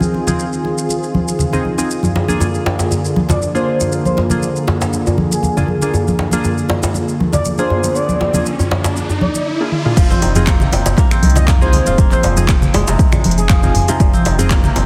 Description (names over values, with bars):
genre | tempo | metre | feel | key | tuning
afro house | 119 BPM | 4/4 | swing 53% on 16ths | F dorian | A4 = 441 Hz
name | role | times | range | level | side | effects
warm analog pad | sustained chords | 0.0-9.4 s | D3 to Ab4 | -23 LUFS | equal | chorus, sidechain pumping
warm analog keys | stabs | 0.0-14.6 s | Bb3 to Ab4 | -25 LUFS | equal | chorus, sidechain pumping, low-pass filter, tape echo
afro-pop drum kit | drums | 0.0-14.9 s | crash cymbal, finger snaps, handclaps, hi-hat, shaker, toms | -24 LUFS | equal | studio reverb
congas | percussion | 0.0-14.9 s | none | -22 LUFS | equal | none
djembe | percussion | 2.0-14.9 s | none | -22 LUFS | equal | none
expressive synth lead | melody | 3.3-14.1 s | Ab4 to Eb5 | -24 LUFS | equal | lush chorus, tape echo
riser | sound effects | 6.9-10.0 s | none | -27 LUFS | equal | none
kora | arpeggios | 10.0-14.9 s | C3 to F4 | -24 LUFS | equal | sidechain pumping, tape echo
round analog bass | bass | 10.0-14.8 s | Eb1 to C2 | -19 LUFS | equal | sidechain pumping
electronic kick drum | drums | 10.0-14.6 s | none | -16 LUFS | equal | overdrive, studio reverb
room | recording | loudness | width
moderate lush hall reverb, RT60 2.0 s | heavily compressed radio sound, multiband compression | -15 LUFS | mono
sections
0.0-10.0 A section; 10.0-14.9 B section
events
filter sweep on drum 0.0-10.0; riser 6.9-10.0; drum fill 9.7; drop 10.0-14.9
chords
0.0 Fm7; 1.9 Bb7; 10.0 Fm7